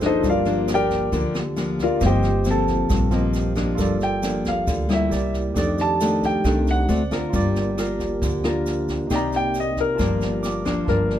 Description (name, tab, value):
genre	bossa nova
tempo	135 BPM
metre	4/4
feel	straight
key	G minor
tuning	A4 = 439 Hz
part	barky tine electric piano	accompaniment	0.0-11.2 s	Bb3 to D6	-30 LUFS	right 5 dB	medium tremolo
part	nylon-string guitar	accompaniment	0.0-11.2 s	F2 to Bb4	-24 LUFS	left 2 dB	none
part	dark French horn section	sustained chords	0.0-10.9 s	C3 to G4	-31 LUFS	right 2 dB	none
part	upright bass	bass	0.0-11.2 s	F#1 to F2	-26 LUFS	equal	none
part	jazz brush drum kit	drums	0.0-11.2 s	kick drum, rim click, snare drum	-30 LUFS	equal	none
part	tube shaker	percussion	0.0-10.9 s	none	-43 LUFS	right 5 dB	none
part	clear concert grand piano	melody	0.1-11.2 s	D#4 to Bb5	-23 LUFS	left 1 dB	none
room	little or no reverb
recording	dark, warm production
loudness	-19 LUFS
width	side -11 dB against mid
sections	0.0-10.9 A section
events	grand piano solo 0.0-10.9; tine electric piano fill 10.2-10.9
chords	0.2 Gm7; 2.0 Eb69/G; 3.8 Gm7; 5.1 C7; 5.6 F13; 6.9 D7; 7.3 Gm7; 9.1 Cm7; 10.0 Gm7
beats	| 0.23 0.68 1.12 1.56 | 2.01 2.45 2.90 3.34 | 3.78 4.23 4.67 5.11 | 5.56 6.00 6.44 6.89 | 7.33 7.77 8.22 8.66 | 9.10 9.55 9.99 10.43 | 10.88